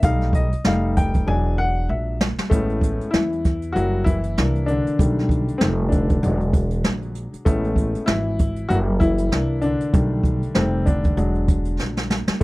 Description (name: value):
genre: hip hop, jazz-hop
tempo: 97 BPM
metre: 4/4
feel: swing 57% on 16ths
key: unclear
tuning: A4 = 440 Hz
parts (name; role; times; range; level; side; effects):
- warm upright piano; accompaniment; 0.0-12.4 s; A2 to G#5; -23 LUFS; left 2 dB; none
- upright bass; bass; 0.0-12.4 s; E1 to E2; -22 LUFS; equal; none
- jazz brush drum kit; drums; 0.0-12.4 s; hi-hat, kick drum, snare drum; -20 LUFS; equal; none
room: little or no reverb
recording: none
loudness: -18 LUFS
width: side -20 dB against mid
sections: 0.0-2.5 A section; 2.5-12.4 B section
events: upright piano solo 0.0-2.5, 2.5-12.4; drum fill 1.3-2.5, 11.8-12.4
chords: 0.0 Baug7; 0.7 F9; 1.3 E7; 2.5 Amaj7; 3.7 F#7b9; 4.4 C9; 5.0 B7alt; 5.6 F9; 6.2 E7; 7.5 Amaj7; 8.7 F#7b9; 9.3 C9; 9.9 B7alt; 10.6 F9; 11.2 E7